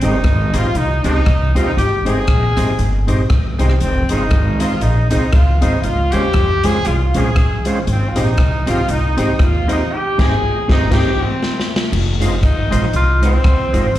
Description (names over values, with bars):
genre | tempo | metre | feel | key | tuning
ska | 118 BPM | 4/4 | swing 57% on 8ths | F minor | A4 = 440 Hz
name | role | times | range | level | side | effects
warm horn section | melody | 0.0-11.7 s | C4 to Ab4 | -20 LUFS | equal | slapback echo
mellow electric guitar | accompaniment | 0.0-13.9 s | Ab3 to C5 | -22 LUFS | right 2 dB | slapback echo
overdriven tonewheel organ | stabs | 0.0-13.9 s | Ab3 to G4 | -27 LUFS | left 3 dB | chorus vibrato, slow rotary speaker, tape echo, slapback echo
upright bass | bass | 0.0-14.0 s | F1 to F2 | -16 LUFS | equal | none
swinging big-band drum kit | drums | 0.0-14.0 s | crash cymbal, hi-hat, kick drum, rim click, snare drum | -19 LUFS | equal | none
warm tenor saxophone | melody | 12.4-14.0 s | C4 to F4 | -19 LUFS | left 1 dB | tape echo, slapback echo
room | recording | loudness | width
light reverb | live gig heard through the venue's PA, club reverb | -13 LUFS | side -13 dB against mid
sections
0.0-11.9 A section; 11.9-14.0 B section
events
band accent 9.9-11.9; drum fill 11.4-11.9; tenor saxophone solo 11.9-14.0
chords
0.0 Abmaj7; 3.8 Fm7; 5.8 Dbmaj7; 7.9 Abmaj7; 11.9 Fm7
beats
0.24 0.75 1.26 | 1.77 2.28 2.79 3.30 | 3.81 4.32 4.82 5.33 | 5.84 6.35 6.86 7.36 | 7.87 8.38 8.88 9.39 | 9.90 10.41 10.91 11.42 | 11.93 12.43 12.94 13.45 | 13.95